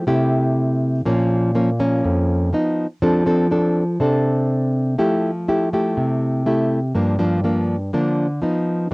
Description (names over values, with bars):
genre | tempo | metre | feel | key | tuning
bossa nova | 122 BPM | 4/4 | straight | F major | A4 = 439 Hz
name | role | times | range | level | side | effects
nylon-string guitar | solo | 0.0-8.9 s | F2 to A4 | -17 LUFS | equal | cassette tape
room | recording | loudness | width
moderate booth ambience, RT60 0.2 s | home recording on cassette | -17 LUFS | side -29 dB against mid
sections
0.0-5.0 A section; 5.0-8.9 A section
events
none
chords
0.0 Fmaj9 (rootless); 1.1 Bbm; 2.5 B; 3.0 F6; 5.0 Fmaj9; 6.9 Gm7; 8.4 B